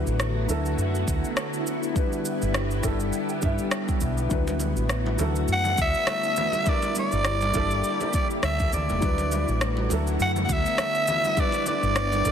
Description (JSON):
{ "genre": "sunset chillout", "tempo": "102 BPM", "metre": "4/4", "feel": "swing 56% on 16ths", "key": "D major", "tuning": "A4 = 441 Hz", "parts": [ { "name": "dark grand piano", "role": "accompaniment", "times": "0.0-12.3 s", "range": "F#3 to E5", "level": "-31 LUFS", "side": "left 2 dB", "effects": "auto-pan, vintage 12-bit sampler grit, digital delay" }, { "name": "soft string machine", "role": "sustained chords", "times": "0.0-12.3 s", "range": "D3 to G4", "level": "-31 LUFS", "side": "equal", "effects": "phaser, ensemble chorus" }, { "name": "woody fretless electric bass", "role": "bass", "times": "0.0-12.3 s", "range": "E1 to G2", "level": "-26 LUFS", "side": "equal", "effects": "wide subtle chorus" }, { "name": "electronic shaker and rim click", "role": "drums", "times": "0.1-12.3 s", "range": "none", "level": "-31 LUFS", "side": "equal", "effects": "none" }, { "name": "electronic kick drum", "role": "drums", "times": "1.1-12.3 s", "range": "none", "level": "-27 LUFS", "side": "equal", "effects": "none" }, { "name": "congas", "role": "percussion", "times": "4.5-12.3 s", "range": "none", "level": "-35 LUFS", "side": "left 2 dB", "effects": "none" }, { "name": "growling soprano saxophone", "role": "melody", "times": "5.5-12.3 s", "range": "D5 to F#5", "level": "-25 LUFS", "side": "equal", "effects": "digital delay" } ], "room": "moderate lush hall reverb, RT60 1.9 s", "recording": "dense, heavily limited modern master", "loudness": "-22 LUFS", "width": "side -8 dB against mid", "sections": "0.0-12.3 A section", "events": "none", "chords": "0.0 D69; 2.0 G6; 4.3 D69; 6.7 Gm6; 9.0 D69; 11.4 G6" }